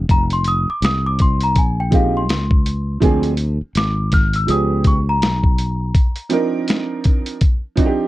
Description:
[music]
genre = hip hop, jazz-hop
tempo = 82 BPM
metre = 4/4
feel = swing 59% on 16ths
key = unclear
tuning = A4 = 445 Hz
[part]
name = sustaining fretless electric bass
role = bass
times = 0.0-5.9 s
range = F1 to D2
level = -19 LUFS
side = equal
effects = none
[part]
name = celesta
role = melody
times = 0.1-6.9 s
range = F5 to F6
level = -22 LUFS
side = left 1 dB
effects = none
[part]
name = dusty soul sampler-style drum kit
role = drums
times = 0.1-8.0 s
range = hi-hat, kick drum, snare drum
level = -16 LUFS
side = equal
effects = none
[part]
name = warm upright piano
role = accompaniment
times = 1.9-8.1 s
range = F3 to Bb4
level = -19 LUFS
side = right 4 dB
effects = none
[sound]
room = little or no reverb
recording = dark, warm production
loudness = -15 LUFS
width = side -17 dB against mid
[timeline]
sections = 0.0-8.1 A section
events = celesta solo 0.0-8.1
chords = 0.1 F5; 3.0 Dm7b5; 4.5 Db7#11; 5.9 Cm11

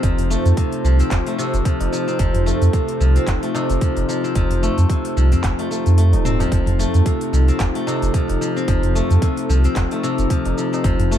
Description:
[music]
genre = organic downtempo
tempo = 111 BPM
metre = 4/4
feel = swing 56% on 16ths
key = unclear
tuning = A4 = 441 Hz
[part]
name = warbly tape-like pad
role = sustained chords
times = 0.0-11.2 s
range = Eb4 to C5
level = -26 LUFS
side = equal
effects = chorus, built-in reverb, vintage 12-bit sampler grit, sidechain pumping
[part]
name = steel-string zither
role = arpeggios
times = 0.0-11.2 s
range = C3 to C4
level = -22 LUFS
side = left 2 dB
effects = ping-pong delay
[part]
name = warm sub bass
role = bass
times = 0.0-11.2 s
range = Eb1 to F2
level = -16 LUFS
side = equal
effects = none
[part]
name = electronic kick drum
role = drums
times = 0.0-11.0 s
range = none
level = -20 LUFS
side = equal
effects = none
[part]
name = organic electronic drum kit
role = drums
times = 0.0-11.2 s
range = handclaps, hi-hat, shaker, toms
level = -30 LUFS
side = equal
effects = none
[part]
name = tabla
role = percussion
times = 0.0-11.1 s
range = none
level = -28 LUFS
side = left 1 dB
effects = none
[sound]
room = light reverb, digital ambience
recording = dark, warm production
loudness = -16 LUFS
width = side -10 dB against mid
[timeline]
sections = 0.0-11.2 A section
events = kick drops out 6.0-6.5; drum fill 6.1-6.5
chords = 0.0 F7

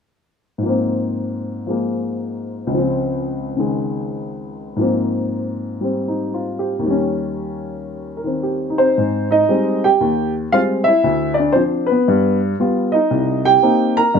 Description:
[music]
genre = solo jazz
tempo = 116 BPM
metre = 4/4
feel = swing 66% on 8ths, rubato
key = Ab major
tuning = A4 = 440 Hz
[part]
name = warm baby grand piano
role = solo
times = 0.6-14.2 s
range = G1 to Bb5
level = -16 LUFS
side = equal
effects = none
[sound]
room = moderate small room reverb, RT60 0.5 s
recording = minimal, uncompressed stereo recording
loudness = -16 LUFS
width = side -6 dB against mid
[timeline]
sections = 0.7-9.0 A section; 9.0-14.2 B section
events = none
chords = 0.7 Ab69; 2.7 Dbmaj7; 4.8 Ab69; 6.9 Eb7; 9.0 Abmaj7; 11.1 Dm13; 12.1 G7; 13.1 Cm7

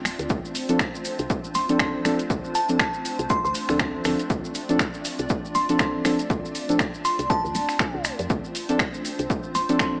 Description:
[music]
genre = deep house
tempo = 120 BPM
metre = 4/4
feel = swing 57% on 16ths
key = D minor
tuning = A4 = 440 Hz
[part]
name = hollow soft pad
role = sustained chords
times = 0.0-10.0 s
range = A3 to D5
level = -33 LUFS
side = equal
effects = ensemble chorus, sidechain pumping
[part]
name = woody FM bass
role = bass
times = 0.1-9.7 s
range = D1 to F2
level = -31 LUFS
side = equal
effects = sidechain pumping
[part]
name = deep house drum kit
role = drums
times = 0.1-9.9 s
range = finger snaps, hi-hat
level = -27 LUFS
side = equal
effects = overdrive
[part]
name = maracas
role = percussion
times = 0.1-9.9 s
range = none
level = -36 LUFS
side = equal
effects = none
[part]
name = electronic kick drum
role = drums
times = 0.3-9.9 s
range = none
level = -27 LUFS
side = equal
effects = none
[part]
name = deep mellow chord stab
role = stabs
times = 0.7-10.0 s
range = F3 to A4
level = -24 LUFS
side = equal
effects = chorus, sidechain pumping, analog delay
[part]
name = glassy synth bell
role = melody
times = 1.6-9.7 s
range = A5 to C6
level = -26 LUFS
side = equal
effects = chorus, tape echo
[sound]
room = light reverb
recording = small speaker sound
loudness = -22 LUFS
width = side -38 dB against mid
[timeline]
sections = 0.0-10.0 A section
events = none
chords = 0.0 Dm7

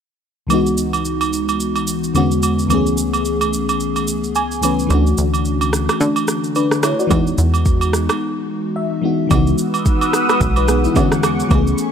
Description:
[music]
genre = amapiano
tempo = 109 BPM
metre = 4/4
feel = swing 58% on 16ths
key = C# minor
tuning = A4 = 439 Hz
[part]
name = FM electric piano with soft pad layer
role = accompaniment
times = 0.5-11.9 s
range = C#2 to G#5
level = -18 LUFS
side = left 2 dB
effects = chorus
[part]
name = afro-pop drum kit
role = drums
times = 0.5-11.9 s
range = kick drum, rim click, shaker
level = -21 LUFS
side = right 1 dB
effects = none
[part]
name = agogo bells and woodblock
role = percussion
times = 0.5-11.7 s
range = none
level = -24 LUFS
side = right 7 dB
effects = none
[part]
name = plucky analog bass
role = bass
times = 4.9-11.7 s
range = B1 to D3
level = -18 LUFS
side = equal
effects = none
[part]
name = lush unison pad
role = sustained chords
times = 9.7-11.9 s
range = A3 to E6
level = -21 LUFS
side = right 1 dB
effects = chorus, phaser, sidechain pumping
[sound]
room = digital ambience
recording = dark, warm production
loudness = -15 LUFS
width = side -8 dB against mid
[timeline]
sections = 0.5-9.3 A section; 9.3-11.9 B section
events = FM electric piano fill 4.1-4.9, 8.5-9.3; break 8.2-9.3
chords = 0.5 C#m11; 2.2 E13; 2.7 Amaj9/C#; 4.9 Dmaj9; 7.1 Emaj9; 9.3 C#m11; 11.0 E13

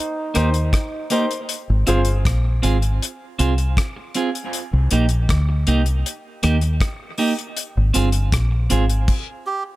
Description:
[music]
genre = dub reggae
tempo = 79 BPM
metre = 4/4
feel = straight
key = C minor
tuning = A4 = 440 Hz
[part]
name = bright trombone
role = second line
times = 0.0-1.1 s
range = Eb4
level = -30 LUFS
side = right 2 dB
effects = dub echo
[part]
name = clean electric guitar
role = accompaniment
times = 0.3-8.8 s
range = Bb3 to Ab4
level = -24 LUFS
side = right 4 dB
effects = dub echo
[part]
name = warm upright piano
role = stabs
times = 0.3-2.1 s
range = Eb4 to C5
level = -26 LUFS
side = left 3 dB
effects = dub echo
[part]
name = damped 70s drum kit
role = drums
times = 0.3-9.3 s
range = crash cymbal, hi-hat, kick drum, rim click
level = -22 LUFS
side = left 1 dB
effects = none
[part]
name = deep dub fingered electric bass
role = bass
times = 0.4-9.1 s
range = G1 to Eb2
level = -18 LUFS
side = equal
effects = none
[part]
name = melodica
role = melody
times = 9.5-9.6 s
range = G4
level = -23 LUFS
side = right 4 dB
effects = none
[sound]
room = small room ambience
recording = none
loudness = -18 LUFS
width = side -17 dB against mid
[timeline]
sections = 0.0-9.8 A section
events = stop 9.1-9.8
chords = 0.0 Cm7; 1.5 Ab6; 4.5 Cm7; 7.6 Ab6

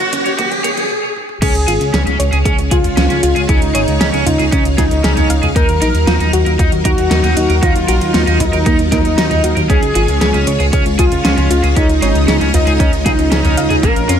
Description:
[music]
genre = synthwave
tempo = 116 BPM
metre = 4/4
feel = straight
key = Db major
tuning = A4 = 445 Hz
[part]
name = string machine, full ensemble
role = sustained chords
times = 0.0-14.2 s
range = Gb3 to F5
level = -21 LUFS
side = equal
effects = ensemble chorus, sidechain pumping
[part]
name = soft round pluck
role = arpeggios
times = 0.0-14.2 s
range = Bb3 to F5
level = -22 LUFS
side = right 2 dB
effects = chorus, digital delay
[part]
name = crunchy overdriven guitar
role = riff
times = 0.0-14.1 s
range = Bb3 to Db5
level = -21 LUFS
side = right 1 dB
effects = wide subtle chorus, digital delay
[part]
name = chorused synth bass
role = bass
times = 0.0-14.2 s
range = Gb1 to F2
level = -16 LUFS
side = equal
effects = sidechain pumping
[part]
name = pop drum kit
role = drums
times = 0.0-14.2 s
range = crash cymbal, hi-hat, snare drum, toms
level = -20 LUFS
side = equal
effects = overdrive, gated reverb
[part]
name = riser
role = sound effects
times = 0.0-0.9 s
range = none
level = -19 LUFS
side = equal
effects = none
[part]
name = electronic kick drum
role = drums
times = 0.4-13.9 s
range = none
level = -15 LUFS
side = equal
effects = overdrive
[part]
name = wide unison lead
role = melody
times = 1.4-14.2 s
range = Eb4 to Bb4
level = -18 LUFS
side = equal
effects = tape echo
[sound]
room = light reverb, digital ambience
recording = high-pass filter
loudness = -11 LUFS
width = side -8 dB against mid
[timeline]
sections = 0.0-1.4 A section; 1.4-14.2 B section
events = drum fill 0.0-0.9, 0.9-1.4; riser 0.0-0.9; stop 0.9-1.4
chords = 0.0 Gb; 1.4 Db; 5.6 Ebmadd9; 9.7 Db

